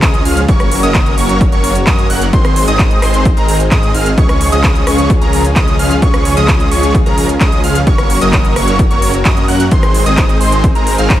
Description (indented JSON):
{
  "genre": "EDM, festival progressive house",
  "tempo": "130 BPM",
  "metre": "4/4",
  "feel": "straight",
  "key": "Db major",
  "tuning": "A4 = 443 Hz",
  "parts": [
    { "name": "lush unison pad", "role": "sustained chords", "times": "0.0-11.2 s", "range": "Db3 to Db5", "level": "-21 LUFS", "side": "left 1 dB", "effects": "chorus, sidechain pumping" },
    { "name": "wide unison lead", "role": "arpeggios", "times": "0.0-11.2 s", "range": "Bb5 to Gb6", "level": "-19 LUFS", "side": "right 1 dB", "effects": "sidechain pumping, tape echo" },
    { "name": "supersaw chords", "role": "riff", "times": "0.0-11.2 s", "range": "Eb3 to Gb5", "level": "-17 LUFS", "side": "equal", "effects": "sidechain pumping, tape echo" },
    { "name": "wide detuned saw bass", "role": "bass", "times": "0.0-11.2 s", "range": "Gb1 to Ab2", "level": "-16 LUFS", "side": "equal", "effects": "chorus, sidechain pumping" },
    { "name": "big-room dance drum kit", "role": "drums", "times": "0.0-11.2 s", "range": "handclaps, hi-hat, rim click", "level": "-19 LUFS", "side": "right 1 dB", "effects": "overdrive" },
    { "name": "electronic kick drum", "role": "drums", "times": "0.0-11.2 s", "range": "none", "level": "-13 LUFS", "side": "equal", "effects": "overdrive" }
  ],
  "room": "digital ambience",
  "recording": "none",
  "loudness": "-9 LUFS",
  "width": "side -13 dB against mid",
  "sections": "0.0-11.2 A section",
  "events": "none",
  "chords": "0.5 Gb; 2.3 Ab; 4.2 Db; 7.9 Gb; 9.7 Ab"
}